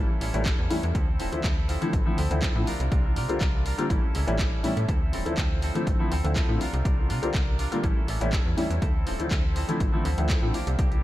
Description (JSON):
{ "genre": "filtered disco house", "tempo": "122 BPM", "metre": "4/4", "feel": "straight", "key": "D minor", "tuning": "A4 = 440 Hz", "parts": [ { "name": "warm baby grand piano", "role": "accompaniment", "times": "0.0-10.5 s", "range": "D3 to F4", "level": "-30 LUFS", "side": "left 1 dB", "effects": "phaser, sidechain pumping, low-pass filter, dub echo" }, { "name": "direct-recorded clean electric guitar", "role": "riff", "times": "0.0-11.0 s", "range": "F3 to Bb4", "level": "-34 LUFS", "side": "right 1 dB", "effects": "wide subtle chorus, sidechain pumping, low-pass filter, dub echo" }, { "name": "slap-like FM bass", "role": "bass", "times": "0.0-11.0 s", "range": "D1 to C3", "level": "-28 LUFS", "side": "equal", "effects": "sidechain pumping, low-pass filter" }, { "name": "punchy analog drum machine", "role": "drums", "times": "0.2-11.0 s", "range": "handclaps, hi-hat", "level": "-36 LUFS", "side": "equal", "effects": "sidechain pumping on hats" }, { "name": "electronic kick drum", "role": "drums", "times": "0.5-10.9 s", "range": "none", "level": "-26 LUFS", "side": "equal", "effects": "overdrive" } ], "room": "digital ambience", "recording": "echo-heavy mix", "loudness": "-23 LUFS", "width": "side -15 dB against mid", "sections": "0.0-11.0 A section", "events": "none", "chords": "0.0 A7; 0.9 Dm9; 2.7 C9sus4; 3.9 A7; 4.9 Dm9; 6.6 C9sus4; 7.8 A7; 8.8 Dm9" }